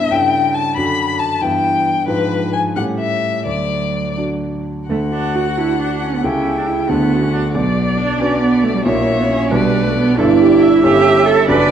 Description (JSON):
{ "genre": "quick classical-period movement for piano quartet", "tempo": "83-94 BPM (dotted quarters)", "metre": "6/8", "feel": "rubato", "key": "D major", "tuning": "A4 = 441 Hz", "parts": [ { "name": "warm violin", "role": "melody", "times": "0.0-11.7 s", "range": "B4 to B5", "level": "-20 LUFS", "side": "left 5 dB", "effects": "none" }, { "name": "rich cello", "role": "second line", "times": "0.0-11.7 s", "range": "B2 to B4", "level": "-17 LUFS", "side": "right 4 dB", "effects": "none" }, { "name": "clear concert grand piano", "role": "accompaniment", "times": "0.0-11.7 s", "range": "F#1 to C#5", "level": "-18 LUFS", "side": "equal", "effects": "none" }, { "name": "rich viola", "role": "accompaniment", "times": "4.9-11.7 s", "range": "E4 to E5", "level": "-21 LUFS", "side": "right 1 dB", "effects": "none" } ], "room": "wet scoring stage reverb, RT60 1.7 s", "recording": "dark, warm production", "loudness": "-13 LUFS", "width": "side -9 dB against mid", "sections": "0.0-4.9 A section; 4.9-11.7 B section", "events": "none", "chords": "0.1 A7/G; 0.8 D/F#; 1.4 Em/G; 2.1 G#dim7; 2.8 A7; 3.5 D; 6.2 A7/C#; 6.9 D; 7.5 Bm; 8.9 F#7/A#; 9.5 Bm; 10.2 Em7/G; 10.8 A7/G", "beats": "0.11 | 0.77 1.42 | 2.08 2.76 | 3.46 4.18 | 4.89 5.58 | 6.24 6.90 | 7.55 8.20 | 8.86 9.51 | 10.19 10.83 | 11.48" }